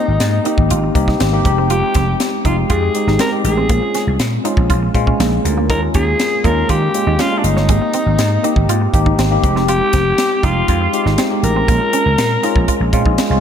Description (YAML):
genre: polished 1980s jazz-funk pop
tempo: 120 BPM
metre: 4/4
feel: straight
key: Bb dorian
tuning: A4 = 439 Hz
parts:
  - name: growling alto saxophone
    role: melody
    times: 0.0-12.9 s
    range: D4 to Bb4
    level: -19 LUFS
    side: left 1 dB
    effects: ping-pong delay
  - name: tine electric piano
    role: accompaniment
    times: 0.0-13.4 s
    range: G3 to Bb4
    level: -19 LUFS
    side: left 2 dB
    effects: overdrive, medium stereo tremolo, wide subtle chorus
  - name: clean electric guitar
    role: riff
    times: 0.0-13.3 s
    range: Ab3 to F4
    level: -24 LUFS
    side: right 8 dB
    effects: analog chorus
  - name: vintage slap bass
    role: bass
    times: 0.1-13.4 s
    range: F1 to Eb3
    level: -17 LUFS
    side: equal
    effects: none
  - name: tight funk drum kit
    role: drums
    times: 0.2-13.3 s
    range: hi-hat, kick drum, snare drum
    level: -19 LUFS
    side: equal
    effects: none
room: moderate plate reverb, RT60 2.0 s, small room ambience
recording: dreamy mix soaked in reverb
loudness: -13 LUFS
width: side -8 dB against mid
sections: 0.0-13.4 A section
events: none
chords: 0.0 Abmaj7; 1.4 Fm7; 3.7 Bbm7; 5.7 Eb7sus4; 7.7 Abmaj7; 9.4 Fm7; 11.7 Bbm7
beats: 0.20 0.70 1.20 | 1.70 2.20 2.70 3.20 | 3.70 4.20 4.69 5.19 | 5.69 6.19 6.69 7.19 | 7.69 8.19 8.69 9.19 | 9.69 10.18 10.68 11.18 | 11.68 12.18 12.68 13.18